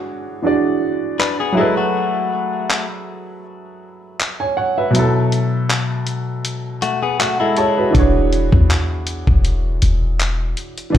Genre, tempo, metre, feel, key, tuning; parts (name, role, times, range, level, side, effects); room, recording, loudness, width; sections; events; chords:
contemporary R&B; 80 BPM; 4/4; swing 54% on 16ths; A4 = 440 Hz
clear grand piano; accompaniment; 0.0-11.0 s; B2 to A5; -19 LUFS; right 1 dB
direct-recorded clean electric guitar; arpeggios; 1.2-7.9 s; G#3 to B4; -20 LUFS; left 6 dB; digital delay
dusty soul sampler-style drum kit; drums; 1.2-11.0 s; handclaps, hi-hat, kick drum; -18 LUFS; left 1 dB
clean 808-style bass; bass; 7.9-11.0 s; E1 to E2; -17 LUFS; left 1 dB
light reverb; played on a big sound system in a bare room, large studio reverb; -15 LUFS; side -11 dB against mid
0.0-11.0 A section
break 0.0-7.9; grand piano fill 6.8-7.9
0.0 E13; 1.6 F#m11; 4.9 B7sus4; 7.9 E13